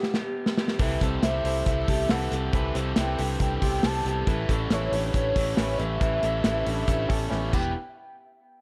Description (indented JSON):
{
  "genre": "jangly indie pop",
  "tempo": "138 BPM",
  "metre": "4/4",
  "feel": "straight",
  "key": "unclear",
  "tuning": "A4 = 440 Hz",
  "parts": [
    { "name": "warm velvety synth lead", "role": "melody", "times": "0.0-7.7 s", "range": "G4 to A5", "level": "-33 LUFS", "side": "equal", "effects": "chorus" },
    { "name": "electric guitar through a small old amp", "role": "arpeggios", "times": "0.0-7.7 s", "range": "A3 to F#5", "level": "-36 LUFS", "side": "equal", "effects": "vibrato effect" },
    { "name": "modern studio drum kit", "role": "drums", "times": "0.0-7.6 s", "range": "crash cymbal, hi-hat, kick drum, snare drum", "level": "-29 LUFS", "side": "equal", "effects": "none" },
    { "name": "mellow reed electric piano", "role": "accompaniment", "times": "0.8-7.8 s", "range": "C4 to C5", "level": "-36 LUFS", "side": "equal", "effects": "none" },
    { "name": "raw garage guitar", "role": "accompaniment", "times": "0.8-7.7 s", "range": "A2 to B4", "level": "-38 LUFS", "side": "equal", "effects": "overdrive" },
    { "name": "vintage muted fingered electric bass", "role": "bass", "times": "0.8-7.7 s", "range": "E1 to C2", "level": "-32 LUFS", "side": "equal", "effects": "none" }
  ],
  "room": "light reverb, studio reverb",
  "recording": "none",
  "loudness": "-26 LUFS",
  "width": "mono",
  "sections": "0.0-7.7 A section",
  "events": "drum fill 0.0-0.8, 7.3-7.7",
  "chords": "0.0 Em (rootless); 0.8 C6; 4.3 A7; 7.5 Em7; 7.7 N.C."
}